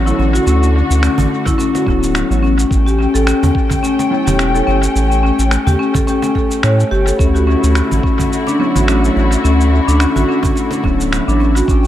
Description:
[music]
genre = organic downtempo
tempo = 107 BPM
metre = 4/4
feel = swing 56% on 16ths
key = unclear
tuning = A4 = 436 Hz
[part]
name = mellow electric guitar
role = accompaniment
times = 0.0-4.8, 8.6-11.5 s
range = F#3 to C#5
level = -24 LUFS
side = right 2 dB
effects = phaser, sidechain pumping, dub echo
[part]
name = muted studio string section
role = sustained chords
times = 0.0-11.9 s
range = D3 to G5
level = -20 LUFS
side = left 2 dB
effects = sidechain pumping
[part]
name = round analog bass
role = bass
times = 0.0-11.9 s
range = D1 to A2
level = -14 LUFS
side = equal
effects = sidechain pumping
[part]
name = marimba with medium hard mallets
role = arpeggios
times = 0.1-11.8 s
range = C#4 to C#5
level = -16 LUFS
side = left 2 dB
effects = dub echo
[part]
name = electronic shaker and finger snaps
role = drums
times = 0.1-11.9 s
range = none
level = -24 LUFS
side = equal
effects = dub echo
[part]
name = cajon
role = percussion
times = 0.2-11.9 s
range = none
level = -24 LUFS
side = right 3 dB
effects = dub echo
[part]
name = electronic kick drum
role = drums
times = 1.5-11.8 s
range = none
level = -17 LUFS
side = equal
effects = none
[sound]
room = light reverb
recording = echo-heavy mix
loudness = -11 LUFS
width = side -12 dB against mid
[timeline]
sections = 0.0-11.9 A section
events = none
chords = 0.0 Dmaj9; 2.7 A9; 7.2 Dmaj9

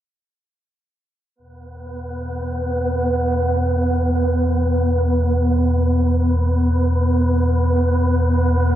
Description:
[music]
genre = dark ambient drone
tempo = free time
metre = none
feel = none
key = unclear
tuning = A4 = 440 Hz
[part]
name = deep rumbling drone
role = drone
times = 1.8-8.8 s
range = E2 to B2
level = -18 LUFS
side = equal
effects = built-in reverb, lush chorus
[part]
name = wind-like tuned noise texture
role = texture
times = 1.9-8.8 s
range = B3 to B4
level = -20 LUFS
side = right 1 dB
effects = built-in reverb
[sound]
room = wet cathedral reverb, RT60 5.1 s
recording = worn, warbling old tape, cassette tape, warbly pitch drift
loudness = -16 LUFS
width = side -12 dB against mid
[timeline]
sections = 1.4-8.8 A section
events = none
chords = 1.4 E5

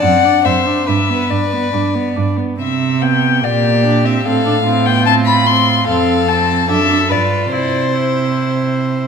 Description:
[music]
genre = quick classical-period movement for string quartet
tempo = 143 BPM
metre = 4/4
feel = rubato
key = C major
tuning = A4 = 440 Hz
[part]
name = rich violin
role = melody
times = 0.0-8.8 s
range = C5 to C6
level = -16 LUFS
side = left 8 dB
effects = none
[part]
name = warm violin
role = second line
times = 0.0-9.0 s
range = F4 to D5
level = -20 LUFS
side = left 2 dB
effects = none
[part]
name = warm viola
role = accompaniment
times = 0.0-9.0 s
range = Bb3 to F4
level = -19 LUFS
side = right 4 dB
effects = none
[part]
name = rich cello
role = bass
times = 0.0-9.0 s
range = F2 to C3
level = -18 LUFS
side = right 5 dB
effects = none
[sound]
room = wet recital hall reverb, RT60 1.8 s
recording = minimal, uncompressed stereo recording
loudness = -12 LUFS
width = side -6 dB against mid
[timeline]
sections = 0.0-9.1 A section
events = none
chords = 0.0 D7/F#; 0.9 G; 2.6 C; 3.4 C5/Bb; 4.2 F/A; 5.9 F; 6.7 D/F#; 7.1 G7; 7.5 C

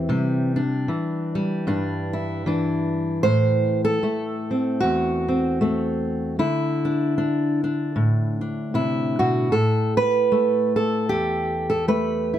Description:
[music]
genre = folk, solo fingerstyle acoustic guitar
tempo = 76 BPM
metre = 4/4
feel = swing 58% on 8ths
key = A dorian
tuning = A4 = 440 Hz
[part]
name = fingerpicked steel-string acoustic guitar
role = solo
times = 0.0-12.4 s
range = E2 to C5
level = -20 LUFS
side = equal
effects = none
[sound]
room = light reverb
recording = dark, warm production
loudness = -20 LUFS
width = side -11 dB against mid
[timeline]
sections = 0.0-9.5 A section; 9.5-12.4 B section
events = none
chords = 0.1 Cadd9; 3.2 Am; 6.4 Dsus2; 9.5 Asus2

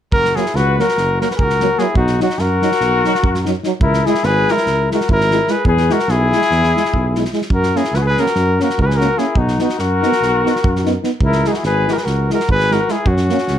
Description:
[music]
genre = balkan folk, Balkan brass band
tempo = 292 BPM (eighths)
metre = 9/8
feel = straight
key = F# mixolydian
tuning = A4 = 440 Hz
[part]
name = mellow trumpet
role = melody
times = 0.1-13.6 s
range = F#4 to B4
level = -18 LUFS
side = equal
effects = slapback echo, plate reverb
[part]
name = warm flugelhorn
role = second line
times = 0.1-13.6 s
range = C#4 to G#4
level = -21 LUFS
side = left 6 dB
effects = none
[part]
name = dark tuba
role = bass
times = 0.1-13.6 s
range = F#1 to F#2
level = -18 LUFS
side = right 1 dB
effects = none
[part]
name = loose indie drum kit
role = percussion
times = 0.1-13.5 s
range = kick drum, snare drum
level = -22 LUFS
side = right 1 dB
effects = none
[part]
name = warm euphonium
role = accompaniment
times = 0.4-13.4 s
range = A#3 to E4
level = -22 LUFS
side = left 7 dB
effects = none
[part]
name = warm euphonium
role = accompaniment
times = 0.4-13.4 s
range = F#3 to B3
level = -22 LUFS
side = right 9 dB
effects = none
[sound]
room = light reverb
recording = close, detailed microphones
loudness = -13 LUFS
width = side -10 dB against mid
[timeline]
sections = 0.1-13.6 A section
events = none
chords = 0.1 F#; 2.0 B; 3.8 C#m; 5.7 E; 7.5 F#; 9.4 B; 11.2 C#m; 13.1 F#

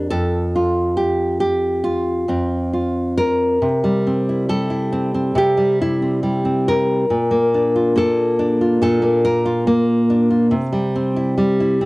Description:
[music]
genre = folk, solo fingerstyle acoustic guitar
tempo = 70 BPM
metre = 4/4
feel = straight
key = unclear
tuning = A4 = 441 Hz
[part]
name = nylon-string guitar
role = solo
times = 0.0-11.9 s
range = F2 to Bb4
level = -16 LUFS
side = equal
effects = cassette tape
[sound]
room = light reverb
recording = home recording on cassette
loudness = -16 LUFS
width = side -22 dB against mid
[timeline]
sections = 0.0-3.6 A section; 3.6-11.9 B section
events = none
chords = 0.1 F; 3.6 C7; 7.1 Bbmaj7; 10.5 C

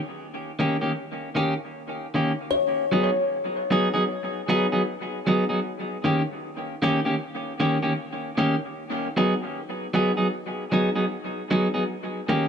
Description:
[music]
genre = reggae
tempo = 77 BPM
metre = 4/4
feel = swing 58% on 16ths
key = G# minor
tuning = A4 = 440 Hz
[part]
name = clean electric guitar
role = accompaniment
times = 0.6-12.5 s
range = D#3 to G#4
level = -23 LUFS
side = equal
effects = dub echo
[part]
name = kalimba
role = melody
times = 2.5-2.6 s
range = C#5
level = -27 LUFS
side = left 4 dB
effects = dub echo
[sound]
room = moderate plate reverb, RT60 3.2 s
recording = echo-heavy mix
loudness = -22 LUFS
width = side -7 dB against mid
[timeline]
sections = 0.0-2.5 A section; 2.5-12.5 B section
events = none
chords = 0.0 D#7; 2.5 G#m7; 5.7 D#7; 8.8 G#m7; 11.9 D#7

